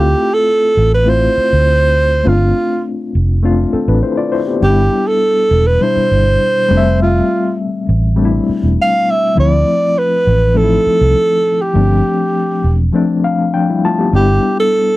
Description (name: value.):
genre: soul.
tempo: 101 BPM.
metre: 4/4.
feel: straight.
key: D dorian.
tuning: A4 = 440 Hz.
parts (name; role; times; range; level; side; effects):
breathy alto saxophone; melody; 0.0-15.0 s; F4 to F5; -13 LUFS; right 2 dB; none.
mellow reed electric piano; accompaniment; 0.0-15.0 s; B2 to A5; -16 LUFS; left 4 dB; medium tremolo.
vintage muted fingered electric bass; bass; 0.0-14.4 s; E1 to D2; -13 LUFS; right 1 dB; none.
room: light reverb.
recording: dry, close 1970s-style studio recording.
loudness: -11 LUFS.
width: side -17 dB against mid.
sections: 0.0-15.0 A section.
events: reed electric piano fill 12.9-14.1.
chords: 0.0 Dm7; 2.3 G7sus4; 4.6 Cmaj7; 6.7 Fmaj7; 9.4 Dm7; 11.7 G7sus4; 14.1 Em7.